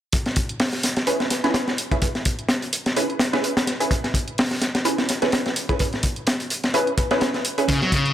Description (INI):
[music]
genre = breakbeat, breaks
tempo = 127 BPM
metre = 4/4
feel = swing 56% on 16ths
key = unclear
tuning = A4 = 440 Hz
[part]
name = crunchy breakbeat drum kit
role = drums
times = 0.1-8.1 s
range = hi-hat, kick drum, snare drum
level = -22 LUFS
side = equal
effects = none
[part]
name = electronic hi-hat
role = drums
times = 0.1-8.1 s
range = none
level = -30 LUFS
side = right 2 dB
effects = none
[part]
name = orchestra-hit-like synth stab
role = stabs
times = 1.1-7.6 s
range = Db4 to Cb5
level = -24 LUFS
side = right 1 dB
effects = built-in reverb, phaser, cassette tape, digital delay
[part]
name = deep dark ambient pad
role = sustained chords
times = 8.1 s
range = none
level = barely audible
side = none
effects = none
[part]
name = sludgy distorted guitar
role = riff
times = 7.7-8.1 s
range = Db3 to Gb3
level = -19 LUFS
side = left 1 dB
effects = overdrive, digital delay
[sound]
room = light reverb, studio reverb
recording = none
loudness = -20 LUFS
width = side -11 dB against mid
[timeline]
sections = 0.1-8.1 A section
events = none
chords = 0.1 Dbm7